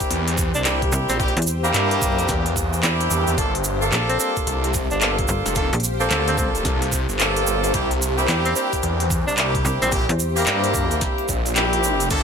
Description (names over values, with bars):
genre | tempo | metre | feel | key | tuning
glitch hop | 110 BPM | 4/4 | swing 62% on 16ths | unclear | A4 = 440 Hz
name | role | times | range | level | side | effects
clear horn section | stabs | 0.0-12.2 s | Bb3 to A4 | -24 LUFS | right 1 dB | sidechain pumping, digital delay
drum and bass drum kit | drums | 0.0-12.2 s | crash cymbal, handclaps, hi-hat, snare drum | -24 LUFS | equal | none
electronic kick drum | drums | 0.0-12.2 s | none | -26 LUFS | equal | none
egg shaker | percussion | 0.0-12.2 s | none | -28 LUFS | right 5 dB | none
granular cloud pad | texture | 0.0-12.2 s | D4 to F5 | -28 LUFS | left 2 dB | built-in reverb, sidechain pumping
phased detuned saw bass | bass | 0.1-12.2 s | F1 to G2 | -24 LUFS | equal | phaser, tube saturation
warm tenor saxophone | melody | 0.5-11.1 s | Bb3 to D4 | -28 LUFS | equal | digital delay
slap-like FM bass | bass | 0.9-10.4 s | G1 to E2 | -22 LUFS | equal | none
room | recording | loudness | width
light reverb | none | -18 LUFS | side -6 dB against mid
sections
0.0-12.2 A section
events
none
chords
0.0 C7; 3.4 Gm7; 7.7 C7